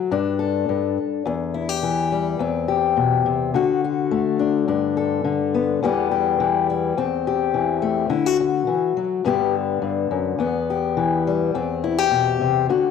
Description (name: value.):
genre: highlife.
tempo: 105 BPM.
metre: 4/4.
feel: swing 54% on 16ths.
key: G major.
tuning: A4 = 440 Hz.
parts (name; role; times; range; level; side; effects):
fingerpicked acoustic archtop guitar; solo; 0.0-12.9 s; E2 to A4; -19 LUFS; left 7 dB; slapback echo.
room: moderate echo chamber reverb, RT60 1.9 s, small room ambience.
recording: none.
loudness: -19 LUFS.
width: side -6 dB against mid.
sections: 0.0-12.9 A section.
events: none.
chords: 0.1 G5; 1.3 Em; 2.4 Cmaj7/E; 3.5 D; 4.7 G; 5.8 Em; 7.0 Am/E; 8.1 D; 9.2 G; 10.4 Em; 11.5 Cmaj7/E.